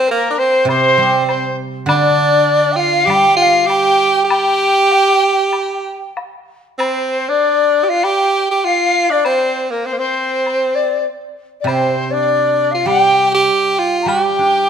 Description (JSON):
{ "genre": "chinese traditional, Chinese chamber ensemble", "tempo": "99 BPM", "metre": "4/4", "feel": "rubato", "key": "G yu mode", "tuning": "A4 = 440 Hz", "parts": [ { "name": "edgy tenor saxophone", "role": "melody", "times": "0.0-14.7 s", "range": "Bb3 to G4", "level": "-16 LUFS", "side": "right 3 dB", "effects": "none" }, { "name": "large dizi", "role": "second line", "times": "0.0-14.7 s", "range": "Bb4 to Bb5", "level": "-15 LUFS", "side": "left 3 dB", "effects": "none" }, { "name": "guzheng", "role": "accompaniment", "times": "0.0-4.9, 11.6-14.7 s", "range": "C3 to D4", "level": "-19 LUFS", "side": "right 3 dB", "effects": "none" }, { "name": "woodblock", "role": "percussion", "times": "0.7-14.2 s", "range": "none", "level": "-26 LUFS", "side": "left 5 dB", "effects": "none" } ], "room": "moderate recital hall reverb, RT60 1.6 s", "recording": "none", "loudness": "-12 LUFS", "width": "side -7 dB against mid", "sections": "0.0-6.8 A section; 6.8-14.7 B section", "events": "none", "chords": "none" }